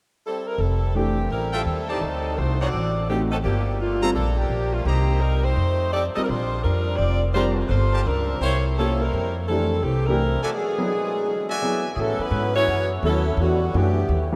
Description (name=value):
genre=jazz, big band swing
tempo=169 BPM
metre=4/4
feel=swing 65% on 8ths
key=F major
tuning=A4 = 440 Hz
part: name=clear saxophone section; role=melody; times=0.3-14.3 s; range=D3 to Eb5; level=-27 LUFS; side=equal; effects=none
part: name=upright bass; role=bass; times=0.6-14.4 s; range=F1 to A2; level=-25 LUFS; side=equal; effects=none
part: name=warm concert grand piano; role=accompaniment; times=1.0-14.4 s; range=E3 to Bb4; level=-32 LUFS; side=equal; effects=none
part: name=clear trumpet section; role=stabs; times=1.5-11.9 s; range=Eb4 to C6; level=-35 LUFS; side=equal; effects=none
part: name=muted trombone section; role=second line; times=10.5-14.3 s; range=B2 to F#4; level=-32 LUFS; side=equal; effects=none
room=wet cathedral reverb, RT60 6.0 s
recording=in a vast, echoing space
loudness=-23 LUFS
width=mono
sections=0.6-12.0 A section; 12.0-14.4 B section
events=none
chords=0.0 Gm69; 0.6 Fmaj9; 2.0 D7b9; 3.4 Gm11; 4.9 Cm7; 5.6 F9; 6.3 Bb69; 7.7 Gm9; 8.4 C7b9; 9.1 Fmaj9; 10.5 E9; 12.0 A69; 13.4 Em9